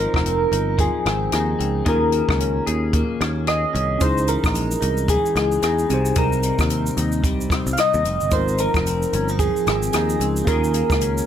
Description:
indie pop, bedroom pop; 112 BPM; 4/4; swing 60% on 16ths; Ab major; A4 = 439 Hz
soft electric-piano-like synth keys; melody; 0.0-11.2 s; Ab4 to F5; -22 LUFS; equal; lush chorus, plate reverb
clean electric guitar; accompaniment; 0.0-11.3 s; C3 to Ab4; -27 LUFS; left 4 dB; lush chorus, warbly pitch drift, plate reverb
tine electric piano; accompaniment; 0.0-11.3 s; Bb3 to C5; -29 LUFS; right 2 dB; medium stereo tremolo, cassette tape, plate reverb
picked electric bass; bass; 0.0-11.2 s; F1 to Fb2; -23 LUFS; equal
compact cocktail drum kit; drums; 0.1-11.3 s; hi-hat, kick drum, rim click, shaker; -23 LUFS; equal
light reverb; -18 LUFS; side -9 dB against mid
0.0-11.3 A section
0.0 Ab6; 1.9 Eb7sus4; 4.0 Dbmadd9; 5.9 Cm; 8.3 Ab6; 10.5 Eb7sus4

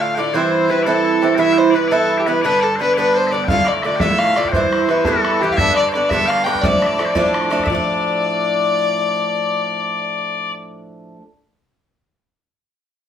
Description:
celtic folk, Celtic jig; 115 BPM (dotted quarters); 6/8; straight; D dorian; A4 = 440 Hz
dark fiddle; melody; 0.0-10.5 s; G4 to G5; -19 LUFS; left 2 dB; plate reverb
loud bright bagpipes; second line; 0.0-10.5 s; G4 to G5; -22 LUFS; left 5 dB
Irish bouzouki; accompaniment; 0.0-11.2 s; G2 to F4; -19 LUFS; right 3 dB
bodhran; percussion; 3.5-7.8 s; -22 LUFS; right 1 dB
wet studio reverb, RT60 0.6 s; heard from further back in the room; -14 LUFS; side -8 dB against mid
0.0-7.7 A section; 7.7-9.8 B section
0.3 C; 1.4 Em; 2.4 G; 3.5 Dm; 4.5 Em; 5.6 G; 6.6 Dm

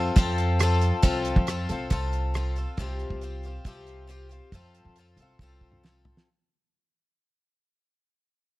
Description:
folk rock and heartland rock; 138 BPM; 4/4; straight; F major; A4 = 441 Hz
picked twelve-string acoustic guitar; accompaniment; 0.0-6.3 s; C3 to A4; -30 LUFS; left 3 dB
upright bass; bass; 0.0-6.1 s; C2 to F2; -27 LUFS; equal
damped 70s drum kit; drums; 0.2-6.3 s; hi-hat, kick drum, rim click, snare drum, toms; -22 LUFS; equal
small room reverb; dry, close 1970s-style studio recording; -23 LUFS; side -18 dB against mid
0.0-6.3 A section
fade-out 0.0-6.3; drum fill 5.4-6.3
0.0 F; 2.8 Csus4; 4.5 F

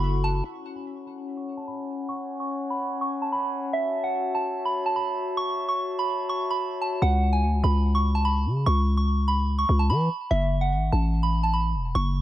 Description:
hip hop; 146 BPM; 4/4; half-time; A4 = 440 Hz
soft synth bell; melody; 0.0-12.2 s; E5 to C#6; -27 LUFS; right 2 dB; chorus, low-pass filter, ping-pong delay
glass harmonica; sustained chords; 0.0-7.0 s; C#4 to A5; -32 LUFS; left 2 dB; low-pass filter
growling 808-style bass; bass; 0.0-0.4, 7.0-12.2 s; E1 to E3; -22 LUFS; equal
digital ambience; -23 LUFS; side -14 dB against mid
0.4-7.0 A section; 7.0-12.2 B section
filter sweep 0.4-7.0
0.4 C#sus4; 3.7 F#m7; 7.0 C#7(no3); 10.3 F#m

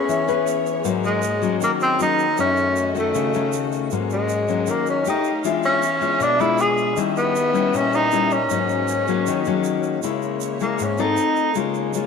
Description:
bossa nova; 157 BPM; 4/4; straight; A4 = 440 Hz
breathy tenor saxophone; melody; 0.0-11.6 s; Ab3 to G#4; -21 LUFS; equal; slapback echo
nylon-string guitar; accompaniment; 0.0-12.1 s; Gb2 to B4; -22 LUFS; left 8 dB
warm studio string section; sustained chords; 0.0-12.1 s; Db3 to F5; -32 LUFS; right 2 dB
tube shaker; percussion; 0.1-12.1 s; -37 LUFS; right 18 dB
moderate plate reverb, RT60 3.5 s; 1960s-style stereo with parts hard left and right; -18 LUFS; side -6 dB against mid
0.0-10.0 A section; 10.0-12.1 B section
tenor saxophone solo 10.0-12.1
0.0 Amaj9 (rootless); 0.8 Ab9sus4; 2.4 Gbm6; 3.9 Ab9sus4; 5.1 F9; 5.4 E7b9; 7.0 Eb7b9; 8.5 Ab9sus4; 10.0 Dbm6; 11.2 F7; 11.6 Bbm7/Db

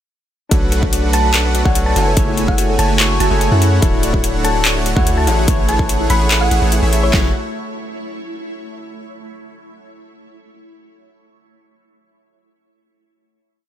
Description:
future bass; 145 BPM; 4/4; half-time; F# minor; A4 = 439 Hz
overdriven tine electric piano; accompaniment; 0.5-7.3 s; D4 to C#5; -25 LUFS; left 4 dB; sidechain pumping, ping-pong delay
shimmering ambient pad; sustained chords; 1.5-7.3 s; D3 to C#5; -28 LUFS; right 1 dB; chorus, built-in reverb, phaser, sidechain pumping
soft round pluck; arpeggios; 0.5-7.3 s; E4 to A5; -28 LUFS; equal; ensemble chorus, sidechain pumping, ping-pong delay
supersaw chords; riff; 0.5-7.3 s; A3 to G#5; -21 LUFS; right 1 dB; sidechain pumping
long sustained 808-style bass; bass; 0.5-7.3 s; D1 to F#2; -17 LUFS; equal; sidechain pumping
dubstep drum kit; drums; 0.5-7.2 s; handclaps, kick drum, snare drum; -16 LUFS; equal; overdrive
dubstep drum kit; drums; 0.5-7.0 s; handclaps, hi-hat; -19 LUFS; left 2 dB; overdrive
thumb-piano-like synth pluck; melody; 1.1-7.1 s; C#5 to C#6; -22 LUFS; equal; chorus, cassette tape, sidechain pumping, ping-pong delay
little or no reverb; -12 LUFS; side -11 dB against mid
0.5-7.1 drop; 7.1-8.8 final chord
drop 0.5-7.1
0.5 Bm7; 2.2 F#m7; 3.8 Dmaj7; 5.5 Amaj7; 7.1 F#m7

